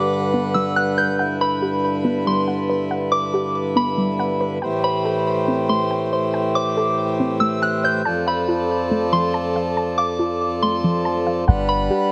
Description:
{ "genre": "hip hop", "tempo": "140 BPM", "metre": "4/4", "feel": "half-time", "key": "G major", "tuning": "A4 = 437 Hz", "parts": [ { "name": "soft synth bell", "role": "melody", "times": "0.0-12.1 s", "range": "B5 to G6", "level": "-26 LUFS", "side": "equal", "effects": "chorus, low-pass filter, delay" }, { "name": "pedal harmonium", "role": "sustained chords", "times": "0.0-12.1 s", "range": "F2 to F#5", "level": "-23 LUFS", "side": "equal", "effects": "none" }, { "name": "soft round pluck", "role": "arpeggios", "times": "0.0-12.1 s", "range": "F3 to A5", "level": "-28 LUFS", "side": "equal", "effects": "chorus, low-pass filter, delay" }, { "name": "soft 808-style bass", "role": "bass", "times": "11.5-11.9 s", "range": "G1", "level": "-22 LUFS", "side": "equal", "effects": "none" } ], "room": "moderate lush hall reverb, RT60 2.8 s", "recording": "none", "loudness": "-20 LUFS", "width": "mono", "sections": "0.0-11.5 A section", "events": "none", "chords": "0.0 Gmaj7; 4.6 Am7; 8.1 F6; 11.5 Gmaj7" }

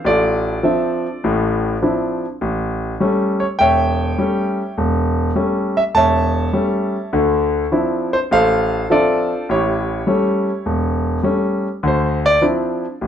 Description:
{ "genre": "solo jazz", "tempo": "102 BPM", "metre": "4/4", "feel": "swing 69% on 8ths", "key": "D minor", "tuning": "A4 = 439 Hz", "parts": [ { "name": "clear concert grand piano", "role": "solo", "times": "0.0-13.1 s", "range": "E1 to A5", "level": "-16 LUFS", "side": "equal", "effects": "none" } ], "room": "wet club reverb, RT60 0.6 s", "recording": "dark, warm production", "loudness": "-16 LUFS", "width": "side -9 dB against mid", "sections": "0.0-11.8 A section; 11.8-13.1 B section", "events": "grand piano solo 11.8-13.1", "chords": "0.0 Dm9; 2.4 A7; 7.1 Dm9; 9.5 A7; 11.8 Dm9" }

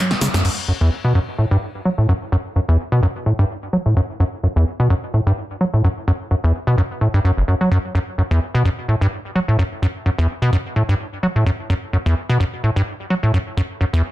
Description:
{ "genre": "acid house", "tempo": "128 BPM", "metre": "4/4", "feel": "swing 55% on 16ths", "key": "F# phrygian", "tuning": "A4 = 440 Hz", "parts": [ { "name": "acid bass, square", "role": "riff", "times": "0.0-14.0 s", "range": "F#1 to F#3", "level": "-16 LUFS", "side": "equal", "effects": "cassette tape" }, { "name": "punchy analog drum machine", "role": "drums", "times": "0.1-0.6 s", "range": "cabasa, crash cymbal, hi-hat, snare drum", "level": "-22 LUFS", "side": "left 1 dB", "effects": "none" } ], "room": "moderate studio reverb, RT60 0.6 s", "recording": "dense, heavily limited modern master", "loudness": "-16 LUFS", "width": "side -16 dB against mid", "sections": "0.4-14.1 A section", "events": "drum fill 0.0-0.4; band accent 0.3; filter sweep on acid bass 0.4-14.1", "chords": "none" }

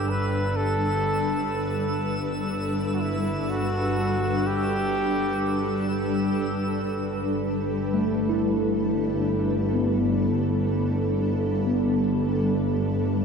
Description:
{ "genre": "ambient", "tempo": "free time", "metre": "none", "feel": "none", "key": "G major", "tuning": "A4 = 439 Hz", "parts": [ { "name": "clear flugelhorn", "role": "melody", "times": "0.0-5.9 s", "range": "E4 to B4", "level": "-30 LUFS", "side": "right 1 dB", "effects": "shimmer reverb, ping-pong delay" }, { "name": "granular cloud pad", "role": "sustained chords", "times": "0.0-13.2 s", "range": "G3 to B4", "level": "-26 LUFS", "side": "equal", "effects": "built-in reverb, shimmer reverb" }, { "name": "clear chamber double bass section", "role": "bass", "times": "0.0-13.2 s", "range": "G1", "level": "-29 LUFS", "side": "equal", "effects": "none" }, { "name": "twinkling granular texture", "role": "texture", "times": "0.0-6.4 s", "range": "E6", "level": "-37 LUFS", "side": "equal", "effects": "built-in reverb, shimmer reverb" }, { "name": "tine electric piano", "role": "arpeggios", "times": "7.9-13.2 s", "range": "A3 to E4", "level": "-26 LUFS", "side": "equal", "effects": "medium stereo tremolo, ping-pong delay" } ], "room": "wet cathedral reverb, RT60 6.0 s", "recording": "in a vast, echoing space", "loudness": "-22 LUFS", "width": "side -6 dB against mid", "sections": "0.0-6.4 A section; 6.4-13.2 B section", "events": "none", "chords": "0.0 G69" }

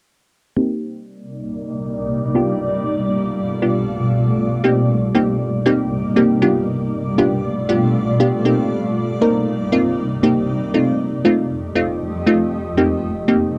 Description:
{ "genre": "pop", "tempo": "118 BPM", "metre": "4/4", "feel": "straight", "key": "C dorian", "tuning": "A4 = 436 Hz", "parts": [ { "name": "wavetable chord stab", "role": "accompaniment", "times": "0.6-13.6 s", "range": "A3 to Bb4", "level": "-19 LUFS", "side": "equal", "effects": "low-pass filter" }, { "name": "granular cloud pad", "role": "sustained chords", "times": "1.3-13.6 s", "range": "F2 to Eb5", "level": "-22 LUFS", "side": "equal", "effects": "built-in reverb, low-pass filter" } ], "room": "moderate booth ambience, RT60 0.2 s", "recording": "dark, warm production", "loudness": "-18 LUFS", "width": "mono", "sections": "0.6-4.6 A section; 4.6-13.6 B section", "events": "filter sweep 0.6-4.6", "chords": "0.6 Cm7; 2.4 G7/B; 4.4 Cm7; 6.4 G7/B; 8.5 Cm7; 10.7 F7; 12.8 Cm7" }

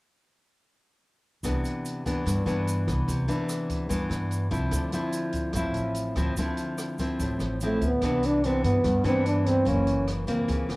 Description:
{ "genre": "bossa nova", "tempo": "146 BPM", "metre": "4/4", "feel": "straight", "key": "C major", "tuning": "A4 = 440 Hz", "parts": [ { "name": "nylon-string guitar", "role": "accompaniment", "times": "1.4-10.8 s", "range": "F#2 to E4", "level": "-28 LUFS", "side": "left 1 dB", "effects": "cassette tape" }, { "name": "upright bass", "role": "bass", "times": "1.4-10.8 s", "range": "F#1 to G2", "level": "-29 LUFS", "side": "equal", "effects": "tube saturation" }, { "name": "open jazz drum kit", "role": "drums", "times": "1.4-10.8 s", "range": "hi-hat, kick drum, rim click", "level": "-35 LUFS", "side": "equal", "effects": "cassette tape" }, { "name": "tube shaker", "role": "percussion", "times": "1.4-8.0 s", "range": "none", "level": "-43 LUFS", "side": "right 2 dB", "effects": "none" }, { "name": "dark trombone", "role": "melody", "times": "7.6-10.1 s", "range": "A3 to D4", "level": "-24 LUFS", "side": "right 1 dB", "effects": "cassette tape" } ], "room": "moderate spring reverb, RT60 1.1 s, studio ambience", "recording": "home recording on cassette", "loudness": "-24 LUFS", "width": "side -22 dB against mid", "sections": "1.4-8.0 A section; 8.0-10.8 B section", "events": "none", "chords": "1.4 Cmaj9; 4.7 Dm9; 8.0 Cmaj9; 9.7 F#7#11" }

